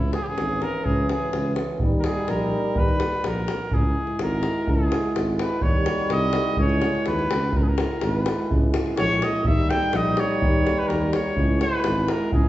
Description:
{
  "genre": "balkan folk, Balkan brass band",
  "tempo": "126 BPM",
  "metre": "2/4",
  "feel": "straight",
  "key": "C# dorian sharp4",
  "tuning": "A4 = 443 Hz",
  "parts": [
    { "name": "warm trumpet", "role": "melody", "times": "0.0-12.5 s", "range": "E4 to G5", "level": "-27 LUFS", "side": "equal", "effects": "none" },
    { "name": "mellow French horn", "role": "accompaniment", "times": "0.0-12.5 s", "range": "C#4 to E4", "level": "-30 LUFS", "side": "left 1 dB", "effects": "none" },
    { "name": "warm trombone", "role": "accompaniment", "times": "0.0-12.5 s", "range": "E3 to G#3", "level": "-30 LUFS", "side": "right 2 dB", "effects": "none" },
    { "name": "dark tuba", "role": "bass", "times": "0.0-12.5 s", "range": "G#1 to D#2", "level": "-26 LUFS", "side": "equal", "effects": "none" },
    { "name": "davul", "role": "percussion", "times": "0.1-12.4 s", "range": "none", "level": "-25 LUFS", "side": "equal", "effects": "none" }
  ],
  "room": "wet recital hall reverb, RT60 1.3 s",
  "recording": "heard from further back in the room, nothing above 7.9 kHz",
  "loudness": "-20 LUFS",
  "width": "side -14 dB against mid",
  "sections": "0.0-12.5 A section",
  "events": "trumpet solo 0.0-12.5",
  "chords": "0.0 C#m; 1.8 D#; 3.7 C#m; 5.6 D#; 6.6 C#m; 9.5 D#; 11.4 C#m"
}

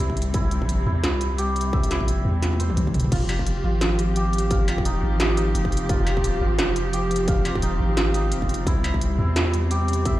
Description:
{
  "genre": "half-time drum and bass",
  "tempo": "173 BPM",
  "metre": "4/4",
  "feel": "swing 58% on 16ths, half-time",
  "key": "F minor",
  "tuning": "A4 = 440 Hz",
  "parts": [
    { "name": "rich symphonic cello section", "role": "sustained chords", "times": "0.0-10.2 s", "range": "C3 to G4", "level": "-28 LUFS", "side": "left 1 dB", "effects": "sidechain pumping" },
    { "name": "santur", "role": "arpeggios", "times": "0.0-10.2 s", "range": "Eb4 to F5", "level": "-29 LUFS", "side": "right 1 dB", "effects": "digital delay" },
    { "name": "long sustained 808-style bass", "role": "bass", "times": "0.0-10.2 s", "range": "Eb1 to E2", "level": "-24 LUFS", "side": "equal", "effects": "none" },
    { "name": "electronic kick drum", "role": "drums", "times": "0.1-10.1 s", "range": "none", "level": "-25 LUFS", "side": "equal", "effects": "distortion" },
    { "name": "industrial drum kit", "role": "drums", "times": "0.2-10.1 s", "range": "crash cymbal, hi-hat, snare drum, struck metal, toms", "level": "-27 LUFS", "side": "right 1 dB", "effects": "none" }
  ],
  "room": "light reverb",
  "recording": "played on a big sound system in a bare room, large studio reverb",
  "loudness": "-20 LUFS",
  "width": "side -15 dB against mid",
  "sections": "0.0-10.2 A section",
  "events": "drum fill 2.4-3.1",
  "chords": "0.0 C; 3.1 Fm7; 8.7 C"
}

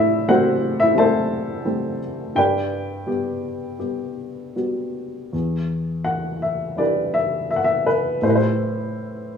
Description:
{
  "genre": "classical, lyrical solo piano",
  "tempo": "75-89 BPM",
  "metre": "4/4",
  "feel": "rubato",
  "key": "G major, E minor from 5.3 s",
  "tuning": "A4 = 440 Hz",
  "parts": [
    { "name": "dark upright piano", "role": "solo", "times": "0.0-9.4 s", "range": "E2 to A5", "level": "-19 LUFS", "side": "left 1 dB", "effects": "none" }
  ],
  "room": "moderate recital hall reverb, RT60 1.8 s",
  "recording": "studio ambience",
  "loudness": "-19 LUFS",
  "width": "side -7 dB against mid",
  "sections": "0.0-5.3 A section; 5.3-9.4 B section",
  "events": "none",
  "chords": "0.0 Am7; 2.4 Gmaj7; 5.3 Em7; 8.2 Am7"
}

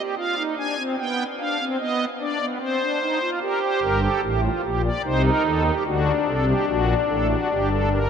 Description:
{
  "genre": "classical, baroque-style 3-part fugue for pipe organ",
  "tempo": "74 BPM",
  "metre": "3/4",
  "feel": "straight",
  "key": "unclear",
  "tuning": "A4 = 440 Hz",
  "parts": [
    { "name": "pipe organ, strings celeste", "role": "solo", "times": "0.0-8.1 s", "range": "G1 to Ab5", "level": "-20 LUFS", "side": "equal", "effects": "none" }
  ],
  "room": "wet huge ambient reverb, RT60 8.5 s",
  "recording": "in a vast, echoing space",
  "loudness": "-20 LUFS",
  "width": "side -7 dB against mid",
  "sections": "0.0-8.1 A section",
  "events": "none",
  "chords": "0.2 Fm; 1.0 G7/B; 2.6 Cm; 3.4 Gm; 5.0 Cm; 5.9 D7; 7.5 Gm"
}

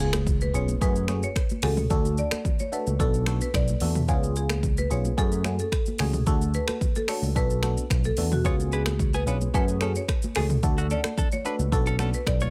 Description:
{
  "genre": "afrobeats",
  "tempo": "110 BPM",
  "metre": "4/4",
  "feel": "straight",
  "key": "F# harmonic minor",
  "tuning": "A4 = 440 Hz",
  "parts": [
    { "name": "marimba with hard mallets", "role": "melody", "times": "0.0-12.5 s", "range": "F#4 to D5", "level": "-34 LUFS", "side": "equal", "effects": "tape echo" },
    { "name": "barking FM electric piano", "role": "accompaniment", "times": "0.0-12.2 s", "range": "A3 to A4", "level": "-34 LUFS", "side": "equal", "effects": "phaser" },
    { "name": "barky tine electric piano", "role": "bass", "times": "0.0-12.5 s", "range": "B1 to F#2", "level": "-28 LUFS", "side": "equal", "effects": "none" },
    { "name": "impact", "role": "sound effects", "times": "0.0-1.9 s", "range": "none", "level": "-40 LUFS", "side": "equal", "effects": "none" },
    { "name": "deep house drum kit", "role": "drums", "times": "0.1-12.5 s", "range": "finger snaps, hi-hat, kick drum, rim click, shaker, toms", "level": "-29 LUFS", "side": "equal", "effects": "overdrive" },
    { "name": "congas", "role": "percussion", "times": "0.1-12.5 s", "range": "none", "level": "-39 LUFS", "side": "equal", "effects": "none" },
    { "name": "direct-recorded clean electric guitar", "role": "riff", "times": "8.5-12.5 s", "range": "A3 to C#5", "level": "-36 LUFS", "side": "equal", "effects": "none" }
  ],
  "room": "little or no reverb",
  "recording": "none",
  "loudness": "-25 LUFS",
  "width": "mono",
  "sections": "0.0-12.5 A section",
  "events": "impact 0.0-1.9",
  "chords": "0.0 C#7; 0.8 F#madd9; 1.9 D; 3.0 Bm7; 4.1 C#7; 5.2 F#madd9; 6.3 D; 7.4 Bm7; 8.4 C#7; 9.5 F#madd9; 10.6 D; 11.7 Bm7"
}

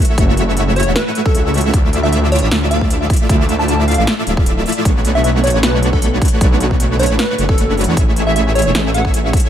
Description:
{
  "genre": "future bass",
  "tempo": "154 BPM",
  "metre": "4/4",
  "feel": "swing 53% on 16ths, half-time",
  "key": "unclear",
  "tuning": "A4 = 440 Hz",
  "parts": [
    { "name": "dense compressed supersaw", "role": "riff", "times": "0.0-9.5 s", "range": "A3 to E5", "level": "-19 LUFS", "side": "equal", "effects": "sidechain pumping, digital delay" },
    { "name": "big-room dance drum kit", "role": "drums", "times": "0.0-9.5 s", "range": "hi-hat, snare drum", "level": "-22 LUFS", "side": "equal", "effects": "none" },
    { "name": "wide detuned saw bass", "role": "bass", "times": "0.2-9.3 s", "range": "D1 to E2", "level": "-16 LUFS", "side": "equal", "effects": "chorus, sidechain pumping" },
    { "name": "electronic kick drum", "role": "drums", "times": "0.2-9.4 s", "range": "none", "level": "-14 LUFS", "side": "equal", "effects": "none" },
    { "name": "plucky unison lead", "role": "melody", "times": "0.8-9.1 s", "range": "A4 to A5", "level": "-21 LUFS", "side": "equal", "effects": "sidechain pumping, ping-pong delay" }
  ],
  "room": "little or no reverb",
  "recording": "none",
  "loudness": "-12 LUFS",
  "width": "side -10 dB against mid",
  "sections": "0.0-9.5 A section",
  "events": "none",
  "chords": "0.0 F#m7; 1.7 Dmadd9; 4.9 Bm9; 8.0 Amaj7"
}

